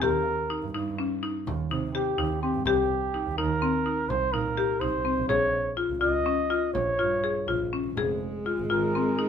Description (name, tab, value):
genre	contemporary instrumental, chamber music in an uneven meter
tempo	249 BPM (eighths)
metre	11/8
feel	straight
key	unclear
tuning	A4 = 440 Hz
part	mellow flugelhorn	melody	0.0-9.3 s	G4 to Eb5	-28 LUFS	right 2 dB	none
part	buzzing marimba with hard mallets	arpeggios	0.0-9.3 s	C4 to Ab4	-28 LUFS	left 5 dB	none
part	warm double bass	bass	0.0-8.9 s	F1 to C3	-32 LUFS	right 5 dB	none
part	frame drum	percussion	0.0-9.1 s	none	-36 LUFS	left 4 dB	none
part	dark viola	second line	8.0-9.3 s	Ab3	-31 LUFS	right 2 dB	none
room	moderate studio reverb, RT60 0.8 s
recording	minimal, uncompressed stereo recording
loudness	-24 LUFS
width	side -8 dB against mid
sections	0.0-9.3 A section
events	none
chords	0.0 Eb; 2.7 Cm7; 5.3 Bbm7; 8.0 Fm